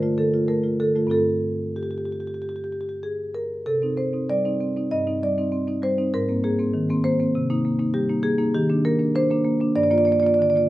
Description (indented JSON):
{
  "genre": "classical, contemporary piece for solo marimba",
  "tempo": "97 BPM",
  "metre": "4/4",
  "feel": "rubato",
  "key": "C minor",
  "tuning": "A4 = 440 Hz",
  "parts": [
    { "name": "marimba with medium mallets", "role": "solo", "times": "0.0-10.7 s", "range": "G2 to Eb5", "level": "-20 LUFS", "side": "equal", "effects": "none" }
  ],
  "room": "moderate large studio reverb, RT60 0.9 s",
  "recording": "none",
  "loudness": "-20 LUFS",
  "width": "side -16 dB against mid",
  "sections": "0.0-10.7 A section",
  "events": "none",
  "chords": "0.0 Gsus2 (rootless); 1.1 G7sus4; 3.7 Cm; 6.1 Abadd9; 7.3 Cm7; 8.5 N.C.; 9.8 Gm7"
}